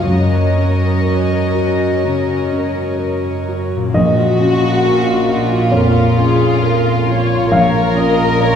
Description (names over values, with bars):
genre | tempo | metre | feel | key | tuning
cinematic, emotional film score for orchestra | 60-69 BPM | 4/4 | rubato | Bb minor | A4 = 439 Hz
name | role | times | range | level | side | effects
warm symphonic violin section | melody | 0.0-8.6 s | F4 to Eb5 | -23 LUFS | equal | none
rich studio violin section | second line | 0.0-8.6 s | F4 to Db5 | -19 LUFS | left 2 dB | none
dark baby grand piano | accompaniment | 0.0-8.6 s | Bb1 to F5 | -17 LUFS | equal | none
warm studio viola section | accompaniment | 0.0-8.6 s | Db4 to Eb5 | -21 LUFS | left 1 dB | none
concert harp | arpeggios | 0.0-7.8 s | Gb2 to F5 | -26 LUFS | left 3 dB | none
rich symphonic cello section | bass | 0.0-8.6 s | Gb2 to Bb2 | -20 LUFS | right 2 dB | none
warm studio double bass section | bass | 4.0-8.6 s | Bb1 | -22 LUFS | right 1 dB | none
room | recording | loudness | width
wet scoring stage reverb, RT60 1.9 s | heard from further back in the room | -12 LUFS | side -8 dB against mid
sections
0.0-3.9 A section; 3.9-8.6 A section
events
none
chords
0.1 Gb6; 3.9 Bbm